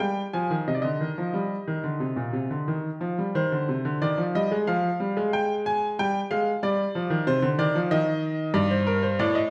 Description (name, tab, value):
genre	classical, baroque-style two-part invention for grand piano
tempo	91 BPM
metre	4/4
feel	straight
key	C minor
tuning	A4 = 442 Hz
part	bright baby grand piano	solo	0.0-9.5 s	G2 to Ab5	-26 LUFS	equal	none
room	wet stone room reverb, RT60 1.1 s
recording	heard from further back in the room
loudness	-26 LUFS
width	mono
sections	0.0-3.3 A section; 3.3-9.5 B section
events	none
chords	0.0 Ebadd11; 0.7 Cm; 4.7 Fm; 6.0 G5; 7.3 Cm; 8.6 Gm